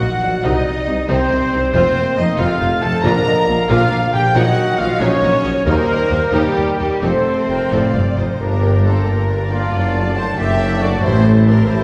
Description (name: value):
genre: cinematic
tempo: 92 BPM (dotted quarters)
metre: 6/8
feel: straight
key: G dorian from 8.4 s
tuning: A4 = 440 Hz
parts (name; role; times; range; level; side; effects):
- warm symphonic violin section; melody; 0.0-11.8 s; G4 to C6; -32 LUFS; equal; none
- mellow hollow silver concert flute; second line; 0.0-11.8 s; A4 to A5; -29 LUFS; equal; none
- rich symphonic violin section; second line; 0.0-11.8 s; G4 to Bb5; -30 LUFS; equal; none
- warm clarinet; second line; 0.0-11.8 s; D4 to Bb5; -28 LUFS; equal; none
- clear symphonic viola section; accompaniment; 0.0-11.8 s; F#3 to G5; -30 LUFS; equal; none
- dark trombone section; sustained chords; 0.0-11.8 s; C3 to Bb3; -29 LUFS; equal; none
- mellow French horn section; sustained chords; 0.0-11.8 s; G3 to Bb4; -24 LUFS; equal; none
- dark trumpet section; stabs; 0.0-11.8 s; C4 to Bb5; -26 LUFS; equal; none
- warm symphonic cello section; bass; 0.0-11.8 s; Eb2 to C3; -23 LUFS; equal; none
- warm symphonic double bass section; bass; 0.0-11.8 s; F1 to Eb2; -23 LUFS; equal; none
- warm tuba; bass; 0.0-11.8 s; F1 to Eb2; -25 LUFS; equal; none
- timpani; percussion; 3.0-3.7 s; Bb2; -28 LUFS; equal; none
- clear oboe; second line; 8.4-11.8 s; A5 to Bb5; -31 LUFS; equal; none
room: wet scoring stage reverb, RT60 1.6 s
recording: heard from further back in the room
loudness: -16 LUFS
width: mono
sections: 0.0-8.4 A section; 8.4-11.8 B section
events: none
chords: 0.4 Cm; 1.7 Fsus4; 2.4 F; 3.0 Bb; 4.4 Gb6/Bb; 5.7 Eb; 7.0 F; 8.4 Gm; 9.7 D/F#; 11.0 Am